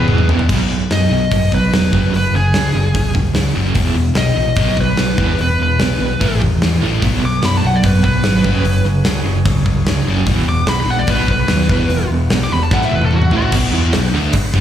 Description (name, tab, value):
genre	hard rock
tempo	148 BPM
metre	4/4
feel	straight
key	B mixolydian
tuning	A4 = 442 Hz
part	smooth overdriven lead guitar	melody	0.0-13.5 s	F#4 to D6	-21 LUFS	left 1 dB	slapback echo, tape echo
part	overdriven tonewheel organ	sustained chords	0.0-0.5, 7.0-14.6 s	E3 to F#5	-31 LUFS	equal	slow rotary speaker
part	crunchy overdriven guitar	riff	0.0-14.6 s	E2 to F#4	-20 LUFS	right 8 dB	tremolo, slapback echo
part	sludgy distorted guitar	riff	0.0-14.6 s	E2 to F#4	-20 LUFS	left 6 dB	overdrive
part	overdriven fingered electric bass	bass	0.0-14.6 s	E1 to F#2	-18 LUFS	equal	none
part	gated 80s drum kit	drums	0.1-14.6 s	crash cymbal, hi-hat, kick drum, snare drum, toms	-18 LUFS	equal	none
room	light reverb, small room ambience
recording	live gig heard through the venue's PA, club reverb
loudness	-13 LUFS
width	side -10 dB against mid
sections	0.5-13.5 A section; 13.5-14.6 B section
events	drum fill 0.0-0.5, 12.7-13.5; lead electric guitar solo 0.5-13.5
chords	0.5 B; 1.9 F#sus2; 3.8 E5; 4.6 B5; 5.2 E5; 6.2 A5; 7.0 B5; 8.4 F#sus2; 10.3 E5; 11.1 B; 11.7 E5; 12.7 A5; 13.5 B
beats	0.09 | 0.50 0.91 1.31 1.72 | 2.13 2.54 2.95 3.36 | 3.77 4.18 4.58 4.99 | 5.40 5.81 6.21 6.62 | 7.03 7.43 7.84 8.25 | 8.65 9.06 9.46 9.87 | 10.28 10.68 11.09 11.50 | 11.90 12.31 12.71 13.12 | 13.53 13.93 14.34